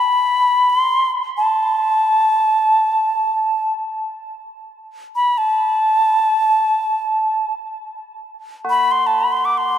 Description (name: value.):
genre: world meditative, free-time meditation music.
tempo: free time.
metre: none.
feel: none.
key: A dorian.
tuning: A4 = 438 Hz.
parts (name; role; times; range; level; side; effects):
bright alto ocarina; melody; 0.0-9.8 s; A5 to D6; -15 LUFS; equal; tape echo.
tubular bells; texture; 8.6-9.8 s; F#4; -24 LUFS; right 1 dB; none.
room: wet cathedral reverb, RT60 5.4 s.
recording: dark, warm production.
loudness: -15 LUFS.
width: side -10 dB against mid.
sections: 0.0-7.7 A section; 7.7-9.8 A section.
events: none.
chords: none.